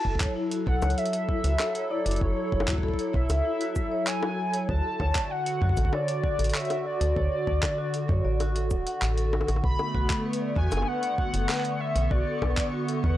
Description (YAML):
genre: IDM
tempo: 97 BPM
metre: 4/4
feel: straight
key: F# minor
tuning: A4 = 439 Hz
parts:
  - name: warbly nostalgic lead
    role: melody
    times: 0.0-13.2 s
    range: C#5 to B5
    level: -31 LUFS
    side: equal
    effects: analog chorus, analog delay
  - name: hollow soft pad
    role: sustained chords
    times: 0.0-13.2 s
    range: D3 to A4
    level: -32 LUFS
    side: equal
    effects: chorus
  - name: vibraphone with medium mallets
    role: arpeggios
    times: 0.1-13.1 s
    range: E4 to F#5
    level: -34 LUFS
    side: left 2 dB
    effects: tape echo
  - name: metallic FM bass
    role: bass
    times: 0.1-13.2 s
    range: D1 to F#2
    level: -26 LUFS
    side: equal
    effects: tube saturation
  - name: electronic kick drum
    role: drums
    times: 0.1-13.2 s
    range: none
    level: -29 LUFS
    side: equal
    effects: overdrive
  - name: jungle sampler-style drum kit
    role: drums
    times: 0.2-13.0 s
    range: bongos, cabasa, handclaps, hi-hat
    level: -33 LUFS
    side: left 1 dB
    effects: overdrive
  - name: flickering grainy texture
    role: texture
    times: 10.3-13.2 s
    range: C#6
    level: -42 LUFS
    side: left 3 dB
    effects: built-in reverb
room: digital ambience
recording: dry, gritty hardware recording, cassette tape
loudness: -24 LUFS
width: side -13 dB against mid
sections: 0.0-13.2 A section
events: none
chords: 0.0 F#m7; 4.7 D; 9.6 Bm7